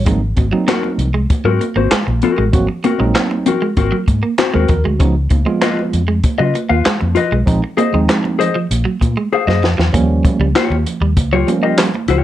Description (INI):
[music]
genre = funk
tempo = 97 BPM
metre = 4/4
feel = straight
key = unclear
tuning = A4 = 440 Hz
[part]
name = electric guitar at the edge of break-up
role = riff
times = 0.0-12.0 s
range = F3 to Db4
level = -21 LUFS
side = right 5 dB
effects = none
[part]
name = tine electric piano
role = stabs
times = 0.0-11.9 s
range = F3 to C5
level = -19 LUFS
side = right 3 dB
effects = none
[part]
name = vintage muted fingered electric bass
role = bass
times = 0.0-12.2 s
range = Ab1 to Db3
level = -16 LUFS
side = equal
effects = none
[part]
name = compact cocktail drum kit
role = drums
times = 0.1-12.2 s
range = handclaps, hi-hat, kick drum, snare drum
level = -16 LUFS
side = equal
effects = vintage 12-bit sampler grit
[part]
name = congas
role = percussion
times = 0.1-12.2 s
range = none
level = -25 LUFS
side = right 5 dB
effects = none
[part]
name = mellow electric guitar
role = accompaniment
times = 0.7-12.2 s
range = C4 to F5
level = -16 LUFS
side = left 7 dB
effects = tube saturation
[sound]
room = light reverb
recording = none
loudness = -13 LUFS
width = side -12 dB against mid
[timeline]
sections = 0.1-9.9 A section; 9.9-12.2 B section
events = drum fill 9.3-9.9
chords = 0.1 Ab9; 5.0 Db9; 7.5 Bb9sus4; 9.9 Eb9